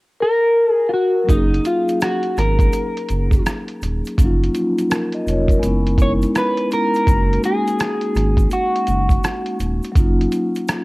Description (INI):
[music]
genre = lo-fi hip hop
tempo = 83 BPM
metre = 4/4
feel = swing 64% on 16ths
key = F# major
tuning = A4 = 439 Hz
[part]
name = electric guitar at the edge of break-up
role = melody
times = 0.2-9.6 s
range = D#4 to C#5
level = -20 LUFS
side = equal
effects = lush chorus, low-pass filter, cassette tape
[part]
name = vibraphone with soft mallets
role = accompaniment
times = 0.2-10.8 s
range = E#3 to D#5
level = -20 LUFS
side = left 1 dB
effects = cassette tape, low-pass filter
[part]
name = sub bass with octave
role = bass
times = 1.3-10.3 s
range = D#1 to G#1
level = -19 LUFS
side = equal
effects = none
[part]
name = lo-fi sampler-style drum kit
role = drums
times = 1.3-10.8 s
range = hi-hat, kick drum, rim click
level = -18 LUFS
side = equal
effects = cassette tape
[part]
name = egg shaker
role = percussion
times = 1.3-10.8 s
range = none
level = -44 LUFS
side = right 4 dB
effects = none
[sound]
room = light reverb, digital ambience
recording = home recording on cassette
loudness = -15 LUFS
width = side -22 dB against mid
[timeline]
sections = 0.0-1.3 A section; 1.3-10.8 B section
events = vibraphone solo 0.0-1.3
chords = 0.0 N.C.; 1.3 F#69; 4.2 D#m9/F#; 5.6 C#m7/F#; 7.1 F#69; 10.0 D#m9/F#